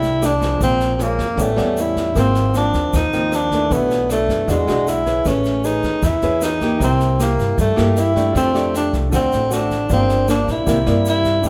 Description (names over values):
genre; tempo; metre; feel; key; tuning
bossa nova; 155 BPM; 4/4; straight; unclear; A4 = 440 Hz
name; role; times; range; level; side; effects
breathy tenor saxophone; melody; 0.0-11.5 s; G#3 to E4; -21 LUFS; equal; none
clear concert grand piano; accompaniment; 0.0-11.5 s; Bb3 to F6; -32 LUFS; equal; none
nylon-string guitar; accompaniment; 0.0-11.5 s; G2 to B4; -24 LUFS; equal; none
upright bass; bass; 0.0-11.5 s; G1 to G2; -24 LUFS; equal; none
jazz brush drum kit; drums; 0.0-11.3 s; kick drum, rim click, snare drum; -29 LUFS; equal; none
egg shaker; percussion; 0.0-11.5 s; none; -39 LUFS; equal; none
room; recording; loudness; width
light reverb; none; -18 LUFS; mono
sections
0.0-11.4 A section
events
none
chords
0.0 F69; 0.6 Bbm7; 1.4 A9; 2.2 Ab69; 3.7 Bm11; 4.5 E9; 5.3 Amaj9; 6.8 C7; 8.3 F69; 9.1 D7; 9.9 Gm7; 10.7 C7